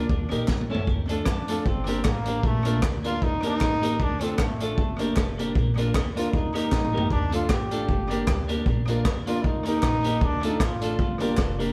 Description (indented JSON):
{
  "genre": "ska",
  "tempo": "154 BPM",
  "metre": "4/4",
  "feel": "swing 57% on 8ths",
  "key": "D phrygian",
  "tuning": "A4 = 440 Hz",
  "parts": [
    { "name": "clear tenor saxophone", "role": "melody", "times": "0.0-0.5 s", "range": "D4", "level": "-44 LUFS", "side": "equal", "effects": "none" },
    { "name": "clean electric guitar", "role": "accompaniment", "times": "0.0-11.7 s", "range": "A3 to Bb4", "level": "-33 LUFS", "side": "equal", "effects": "tape echo" },
    { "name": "clear upright piano", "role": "stabs", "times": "0.0-11.7 s", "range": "C#4 to Bb4", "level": "-34 LUFS", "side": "equal", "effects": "none" },
    { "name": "upright bass", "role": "bass", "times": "0.0-11.7 s", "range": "F1 to F2", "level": "-32 LUFS", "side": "equal", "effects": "none" },
    { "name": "crunchy breakbeat drum kit", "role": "drums", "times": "0.1-11.7 s", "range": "hi-hat, kick drum, rim click, snare drum, toms", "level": "-29 LUFS", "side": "equal", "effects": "none" },
    { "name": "group handclap", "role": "percussion", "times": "0.5-11.5 s", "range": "none", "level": "-43 LUFS", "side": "equal", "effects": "tape echo" },
    { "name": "brilliant trombone", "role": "melody", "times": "1.3-11.6 s", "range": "A3 to G4", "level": "-32 LUFS", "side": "equal", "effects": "none" }
  ],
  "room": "wet stone room reverb, RT60 1.2 s",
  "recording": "band playing live in one room",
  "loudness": "-25 LUFS",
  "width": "mono",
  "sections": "0.9-11.7 A section",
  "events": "drum fill 0.5-0.9, 6.7-7.1; trombone solo 0.9-11.7",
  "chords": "0.1 Eb; 0.5 A; 0.9 Dm; 1.7 Gm; 2.4 Bb; 3.2 Eb; 4.0 Dm; 4.8 Gm; 5.6 Bb; 6.3 Eb; 7.1 Dm; 7.9 Gm; 8.7 Bb; 9.4 Eb; 10.2 Dm; 11.0 Gm"
}